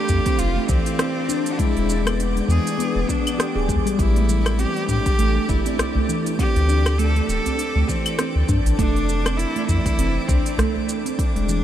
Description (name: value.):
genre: organic downtempo.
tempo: 100 BPM.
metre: 4/4.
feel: swing 57% on 16ths.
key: unclear.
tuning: A4 = 440 Hz.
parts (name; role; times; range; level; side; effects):
clear cello; melody; 0.0-11.6 s; C4 to A4; -26 LUFS; equal; analog delay.
handpan; arpeggios; 0.0-11.6 s; E3 to G#4; -24 LUFS; equal; analog delay.
twinkling granular texture; texture; 0.0-11.6 s; D4 to D5; -33 LUFS; left 2 dB; built-in reverb, lush chorus.
round analog bass; bass; 0.1-11.6 s; D1 to A2; -20 LUFS; equal; none.
electronic kick drum; drums; 0.1-11.3 s; none; -23 LUFS; equal; none.
organic electronic drum kit; drums; 0.1-11.6 s; claves, hi-hat, rim click, shaker; -30 LUFS; equal; overdrive.
udu; percussion; 5.1-10.9 s; none; -26 LUFS; left 1 dB; none.
room: moderate huge ambient reverb, RT60 7.5 s.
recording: dreamy mix soaked in reverb.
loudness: -18 LUFS.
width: side -11 dB against mid.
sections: 0.0-11.6 A section.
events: none.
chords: 0.0 F; 1.6 E; 4.0 A7(no3); 6.4 D5; 8.8 F.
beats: 0.39 0.99 | 1.59 2.19 2.79 3.39 | 3.99 4.59 5.19 5.79 | 6.39 6.99 7.59 8.19 | 8.79 9.39 9.99 10.59 | 11.19.